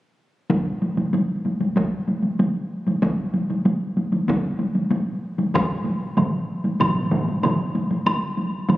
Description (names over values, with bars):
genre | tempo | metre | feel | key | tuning
japanese traditional, taiko drum ensemble | 95 BPM | 4/4 | straight | none | none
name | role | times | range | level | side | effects
taiko ensemble | percussion | 0.5-8.8 s | none | -22 LUFS | equal | none
taiko ensemble | percussion | 0.5-8.2 s | none | -28 LUFS | equal | none
woodblock | percussion | 5.5-8.8 s | none | -27 LUFS | left 1 dB | none
solo taiko drums | percussion | 6.2-8.8 s | none | -24 LUFS | right 2 dB | none
taiko ensemble | percussion | 6.2-8.8 s | none | -31 LUFS | left 1 dB | none
room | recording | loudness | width
wet concert hall reverb, RT60 2.2 s | recorded on a phone in the room, club reverb, compression | -20 LUFS | side -16 dB against mid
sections
0.5-5.6 A section; 5.6-8.8 B section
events
none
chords
none